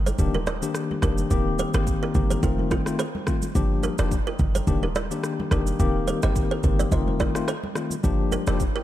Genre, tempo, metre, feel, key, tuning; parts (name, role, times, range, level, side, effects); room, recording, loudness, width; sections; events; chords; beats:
afrobeats; 107 BPM; 4/4; swing 55% on 16ths; G minor; A4 = 440 Hz
short 808-style bass; bass; 0.0-8.7 s; Eb1 to G1; -25 LUFS; equal
kalimba; riff; 0.1-8.8 s; F4 to Eb5; -31 LUFS; right 6 dB; ping-pong delay
afro-pop drum kit; drums; 0.1-8.7 s; kick drum, rim click, shaker; -27 LUFS; equal
congas; percussion; 0.1-8.5 s; -34 LUFS; right 2 dB
tine electric piano; accompaniment; 0.2-8.6 s; Eb3 to G4; -27 LUFS; left 4 dB; medium tremolo
light reverb, digital ambience; dark, warm production; -21 LUFS; side -13 dB against mid
0.0-8.8 A section
0.2 Ebmaj7; 1.3 Cm7/Eb; 2.4 F7; 3.6 Gm7; 4.7 Ebmaj7; 5.8 Cm7/Eb; 6.9 F7; 8.0 Gm7
0.19 0.75 | 1.31 1.87 2.43 2.99 | 3.55 4.11 4.67 5.24 | 5.80 6.36 6.92 7.48 | 8.04 8.60